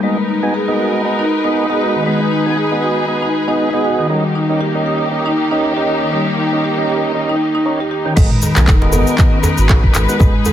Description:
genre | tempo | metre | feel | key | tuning
afro house | 118 BPM | 4/4 | swing 56% on 16ths | G# minor | A4 = 440 Hz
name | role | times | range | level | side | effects
muted studio string section | sustained chords | 0.0-10.5 s | D#3 to B4 | -20 LUFS | left 2 dB | sidechain pumping
marimba with medium mallets | arpeggios | 0.0-10.5 s | D#3 to G#4 | -18 LUFS | equal | sidechain pumping, tape echo
tonewheel organ | stabs | 0.0-10.3 s | B3 to G#5 | -20 LUFS | right 3 dB | slow rotary speaker, sidechain pumping, tape echo
warm sub bass | bass | 8.2-10.3 s | D#1 to B1 | -15 LUFS | equal | sidechain pumping
afro-pop drum kit | drums | 8.2-10.3 s | crash cymbal, handclaps, toms | -20 LUFS | right 1 dB | studio reverb
electronic kick drum | drums | 8.2-10.3 s | none | -12 LUFS | equal | studio reverb
cabasa | percussion | 8.2-10.5 s | none | -26 LUFS | left 5 dB | none
djembe | percussion | 8.2-10.5 s | none | -21 LUFS | right 2 dB | none
room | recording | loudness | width
light reverb, small room ambience | none | -13 LUFS | side -11 dB against mid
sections
0.0-8.2 A section; 8.2-10.5 B section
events
drop 8.2-10.5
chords
0.0 G#m7; 4.1 D#7; 8.2 G#m7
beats
| 0.03 0.54 1.05 1.56 | 2.06 2.57 3.08 3.59 | 4.10 4.61 5.12 5.62 | 6.13 6.64 7.15 7.66 | 8.17 8.68 9.18 9.69 | 10.20

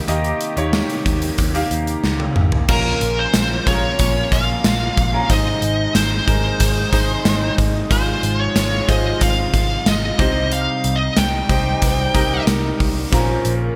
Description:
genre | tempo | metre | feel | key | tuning
1980s-style pop | 92 BPM | 4/4 | straight | unclear | A4 = 442 Hz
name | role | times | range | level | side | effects
mellow hollow bass bansuri | second line | 0.0, 6.6-7.7, 11.8-13.8 s | Ab4 to Eb5 | -31 LUFS | equal | delay
clear grand piano | accompaniment | 0.0-13.8 s | Ab2 to F5 | -26 LUFS | equal | lush chorus
warm analog pad | sustained chords | 0.0-13.8 s | C3 to G4 | -32 LUFS | equal | none
vintage muted picked electric bass | bass | 0.1-13.7 s | Ab1 to Eb2 | -25 LUFS | equal | none
gated 80s drum kit | drums | 0.1-13.6 s | crash cymbal, hi-hat, kick drum, snare drum, tambourine, toms | -22 LUFS | equal | gated reverb
high-gain lead guitar | melody | 2.7-12.4 s | Bb4 to G5 | -24 LUFS | equal | distortion, delay
overdriven electric guitar | accompaniment | 2.7-13.8 s | Ab2 to F4 | -34 LUFS | equal | none
room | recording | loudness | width
moderate plate reverb, RT60 1.5 s, studio ambience | bright 1980s-style digital production | -18 LUFS | mono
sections
0.0-2.7 A section; 2.7-13.8 B section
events
drum fill 2.0-2.7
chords
0.0 Eb; 2.7 Bbm; 5.3 Ab; 7.9 Fm/Ab; 10.2 Cm; 13.1 Bbm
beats
| 0.08 0.73 1.39 2.04 | 2.69 3.34 4.00 4.65 | 5.30 5.95 6.60 7.26 | 7.91 8.56 9.21 9.86 | 10.52 11.17 11.82 12.47 | 13.12

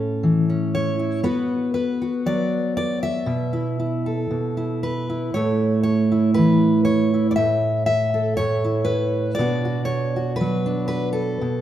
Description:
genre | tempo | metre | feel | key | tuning
folk, solo fingerstyle acoustic guitar | 119 BPM | 4/4 | rubato | unclear | A4 = 440 Hz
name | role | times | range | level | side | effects
fingerpicked steel-string acoustic guitar | solo | 0.0-11.6 s | A2 to E5 | -19 LUFS | equal | none
room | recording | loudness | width
moderate concert hall reverb, RT60 2.3 s | recorded in a church or concert hall | -19 LUFS | side -11 dB against mid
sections
0.0-11.6 A section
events
none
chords
0.0 A; 1.3 Bm; 3.3 Esus4/B; 5.3 Aadd9; 9.4 Bm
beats
0.24 0.75 | 1.25 1.76 2.26 2.77 | 3.28 3.79 4.31 4.83 | 5.35 5.86 6.37 6.87 | 7.38 7.88 8.39 8.89 | 9.39 9.89 10.40 10.91 | 11.42

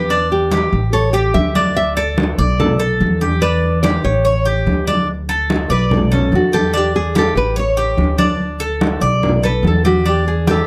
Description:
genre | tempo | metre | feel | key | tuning
latin, Cuban son and guajira | 145 BPM | 4/4 | straight | unclear | A4 = 439 Hz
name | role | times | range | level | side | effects
nylon-string guitar | melody | 0.0-10.7 s | C#4 to E5 | -21 LUFS | equal | none
Cuban tres | arpeggios | 0.0-10.7 s | D4 to D5 | -22 LUFS | equal | none
upright bass | bass | 0.0-10.6 s | A1 to E2 | -21 LUFS | equal | none
congas | percussion | 0.1-10.7 s | none | -22 LUFS | equal | none
room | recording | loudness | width
light reverb | close, detailed microphones | -16 LUFS | mono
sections
0.0-5.1 A section; 5.1-10.7 B section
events
nylon-string guitar solo 5.1-10.7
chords
0.1 Em7; 0.9 A7; 1.8 D5; 2.6 Bm7; 3.4 Em7; 4.2 A7; 5.1 D5; 5.9 Bm7; 6.7 Em7; 7.6 A7; 8.4 D5; 9.2 Bm7; 10.1 Em7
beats
| 0.10 0.52 0.93 1.35 | 1.76 2.17 2.59 3.00 | 3.42 3.83 4.25 4.66 | 5.08 5.49 5.91 6.32 | 6.74 7.15 7.57 7.98 | 8.40 8.81 9.22 9.64 | 10.05 10.47

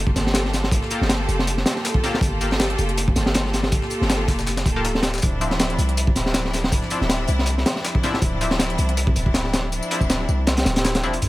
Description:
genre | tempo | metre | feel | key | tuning
drum and bass, jungle | 160 BPM | 4/4 | swing 55% on 16ths | unclear | A4 = 438 Hz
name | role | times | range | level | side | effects
bright studio string section | sustained chords | 0.0-11.3 s | F3 to A4 | -27 LUFS | equal | none
warm 808-style bass | bass | 0.0-11.3 s | D1 to C2 | -24 LUFS | equal | none
crunchy breakbeat drum kit | drums | 0.1-11.3 s | hi-hat, kick drum, snare drum | -21 LUFS | equal | high-pass filter on kick, high-pass filter on hats, high-pass filter on snare, high-pass filter on room
breakbeat sampler-style drum kit | drums | 0.2-11.3 s | hi-hat, snare drum, tambourine | -31 LUFS | left 3 dB | high-pass filter on perc, high-pass filter on snare, high-pass filter on hats
band-passed chord stab | stabs | 0.9-2.5, 4.8-11.2 s | F3 to A4 | -29 LUFS | left 2 dB | chorus, dub echo
sub drop | sound effects | 11.2-11.3 s | none | -21 LUFS | equal | none
room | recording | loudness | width
light reverb | none | -18 LUFS | side -17 dB against mid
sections
0.0-11.2 A section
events
drop 0.0-11.2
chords
0.0 Gm9; 5.2 Dm9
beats
0.35 | 0.72 1.10 1.47 1.85 | 2.22 2.60 2.97 3.35 | 3.72 4.10 4.47 4.85 | 5.22 5.60 5.97 6.35 | 6.72 7.10 7.47 7.85 | 8.22 8.60 8.97 9.35 | 9.72 10.10 10.47 10.85 | 11.22

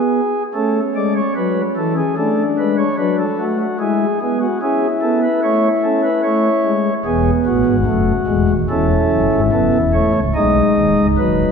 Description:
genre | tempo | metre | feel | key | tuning
classical, baroque-style 4-part fugue for pipe organ | 74 BPM | 4/4 | straight | A major | A4 = 438 Hz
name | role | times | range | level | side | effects
pipe organ, flutes | solo | 0.0-11.5 s | C#1 to D#5 | -14 LUFS | left 1 dB | none
room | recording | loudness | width
wet church reverb, RT60 3.5 s | minimal, uncompressed stereo recording | -14 LUFS | side -6 dB against mid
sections
0.0-11.5 A section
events
none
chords
0.0 E/B (rootless); 0.5 A; 2.2 Bm7; 3.8 E/G#; 5.4 A; 7.1 E; 8.7 F#m7/E; 10.3 B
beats
| 0.54 1.36 2.17 2.98 | 3.80 4.61 5.43 6.24 | 7.05 7.87 8.70 9.52 | 10.35 11.18

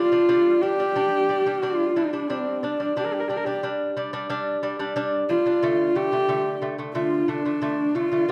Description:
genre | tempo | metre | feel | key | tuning
mongolian traditional, Mongolian folk | 90 BPM | 4/4 | straight | unclear | A4 = 440 Hz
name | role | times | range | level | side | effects
dark horsehead fiddle | melody | 0.0-8.3 s | C4 to Bb4 | -24 LUFS | equal | none
lute | arpeggios | 0.0-8.3 s | D3 to D4 | -29 LUFS | equal | none
room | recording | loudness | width
wet recital hall reverb, RT60 1.6 s | none | -24 LUFS | mono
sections
0.3-8.3 A section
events
none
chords
0.3 G5; 5.6 D5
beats
| 0.29 0.96 1.63 2.29 | 2.96 3.63 4.30 4.96 | 5.63 6.29 6.96 7.62 | 8.29

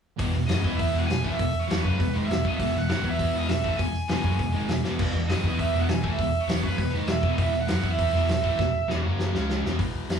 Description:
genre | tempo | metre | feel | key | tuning
punk rock | 200 BPM | 4/4 | straight | E major | A4 = 442 Hz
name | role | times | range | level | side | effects
distorted electric guitar | riff | 0.2-10.2 s | E2 to E4 | -32 LUFS | left 7 dB | distortion
scooped high-gain guitar | riff | 0.2-9.8 s | E2 to E4 | -34 LUFS | equal | distortion
sludgy distorted guitar | riff | 0.2-9.8 s | E2 to E4 | -31 LUFS | right 3 dB | overdrive
overdriven picked electric bass | bass | 0.2-10.2 s | E1 to E2 | -29 LUFS | equal | none
loose indie drum kit | drums | 0.2-10.2 s | crash cymbal, hi-hat, kick drum, snare drum | -29 LUFS | left 1 dB | none
cranked stack guitar | melody | 0.5-9.0 s | B4 to G#5 | -29 LUFS | right 4 dB | overdrive
room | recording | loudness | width
light reverb | band playing live in one room, small room ambience | -23 LUFS | side -7 dB against mid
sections
0.2-9.8 A section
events
drum fill 4.8, 8.6-9.8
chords
0.2 E; 9.0 F#5; 9.3 C#5; 9.6 E5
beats
| 0.20 0.50 0.80 1.10 | 1.40 1.70 1.99 2.29 | 2.59 2.89 3.19 3.49 | 3.79 4.09 4.39 4.69 | 4.99 5.29 5.59 5.89 | 6.18 6.49 6.79 7.08 | 7.38 7.68 7.98 8.29 | 8.59 8.89 9.19 9.49 | 9.79 10.09

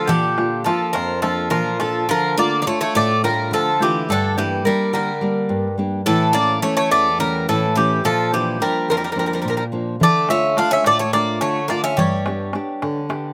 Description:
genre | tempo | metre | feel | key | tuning
greek folk, Greek bouzouki band | 212 BPM (eighths) | 7/8 | straight | unclear | A4 = 439 Hz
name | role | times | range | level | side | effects
Greek bouzouki | melody | 0.0-13.1 s | G4 to F5 | -22 LUFS | equal | none
Greek bouzouki | second line | 0.0-13.1 s | D3 to D4 | -26 LUFS | equal | none
nylon-string guitar | accompaniment | 0.0-13.3 s | E2 to G4 | -25 LUFS | equal | none
darbuka | percussion | 0.1-1.9, 10.0-13.2 s | none | -24 LUFS | equal | none
room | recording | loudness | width
little or no reverb | recorded outdoors, with no room sound | -19 LUFS | mono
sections
0.0-2.1 A section; 2.1-13.3 A section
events
none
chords
0.1 Bb; 2.1 Dm; 4.1 Gm; 6.1 A; 8.0 Bb; 10.0 Dm; 12.0 G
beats
| 0.09 0.38 0.66 0.95 1.23 1.51 1.80 | 2.08 2.37 2.65 2.94 3.22 3.51 3.79 | 4.07 4.36 4.64 4.92 5.21 5.49 5.77 | 6.06 6.34 6.62 6.91 7.19 7.47 7.75 | 8.04 8.32 8.60 8.88 9.16 9.45 9.73 | 10.01 10.29 10.57 10.85 11.13 11.41 11.70 | 11.98 12.26 12.54 12.82 13.10

